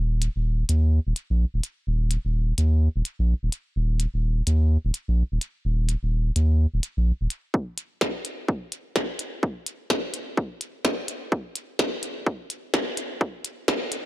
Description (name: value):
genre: minimal techno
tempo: 127 BPM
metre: 4/4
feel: swing 60% on 16ths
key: unclear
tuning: A4 = 440 Hz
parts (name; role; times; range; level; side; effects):
- saturated sub bass; bass; 0.0-7.3 s; Eb1 to Eb2; -21 LUFS; equal; sidechain pumping
- minimal click drum kit; drums; 0.2-14.0 s; hi-hat, snare drum; -27 LUFS; equal; none
- electronic kick drum; drums; 7.5-13.8 s; none; -26 LUFS; equal; high-pass filter on kick
room: little or no reverb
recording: dark, warm production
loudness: -23 LUFS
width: side -17 dB against mid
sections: 0.0-7.5 A section; 7.5-14.1 B section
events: build-up 7.5-14.1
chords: none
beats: 0.45 0.93 1.40 | 1.87 2.34 2.82 3.29 | 3.76 4.23 4.71 5.18 | 5.65 6.12 6.59 7.07 | 7.54 8.01 8.48 8.96 | 9.43 9.90 10.38 10.85 | 11.32 11.79 12.26 12.74 | 13.21 13.68